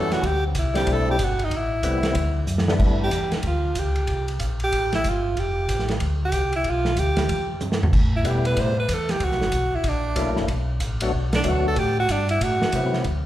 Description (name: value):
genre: soul jazz organ trio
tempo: 187 BPM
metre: 4/4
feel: swing 63% on 8ths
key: unclear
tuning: A4 = 440 Hz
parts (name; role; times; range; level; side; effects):
- breathy tenor saxophone; melody; 0.0-13.0 s; C4 to C5; -24 LUFS; right 1 dB; none
- percussive tonewheel organ; melody; 0.0-3.1, 8.2-13.1 s; F#3 to F#4; -27 LUFS; left 3 dB; slow rotary speaker, overdrive
- mellow tonewheel organ; bass; 0.0-13.3 s; F1 to C3; -25 LUFS; equal; slow rotary speaker
- vintage drum kit; drums; 0.1-13.1 s; crash cymbal, hi-hat, kick drum, ride cymbal, snare drum, toms; -26 LUFS; right 1 dB; none
room: wet recital hall reverb, RT60 1.4 s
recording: recorded in a church or concert hall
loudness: -20 LUFS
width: side -13 dB against mid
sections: 0.0-2.8 A section; 2.8-13.1 A section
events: tenor saxophone solo 0.0-13.1; drum fill 2.5-2.8, 7.6-7.9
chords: 0.2 D9sus4; 1.5 Am7; 2.2 D; 2.8 G9; 4.1 C5; 5.4 Fadd9; 6.7 Bdim; 7.3 Em; 7.9 Asus2; 9.2 Gmaj7#11; 9.9 F#7alt; 10.5 Bm7; 11.8 Em11 (rootless); 12.4 Am69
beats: | 0.23 0.55 0.88 1.20 | 1.52 1.84 2.16 2.48 | 2.80 3.12 3.44 3.76 | 4.08 4.41 4.73 5.05 | 5.37 5.69 6.01 6.33 | 6.65 6.97 7.29 7.61 | 7.93 8.25 8.57 8.89 | 9.21 9.53 9.85 10.17 | 10.49 10.81 11.13 11.45 | 11.77 12.09 12.41 12.73 | 13.05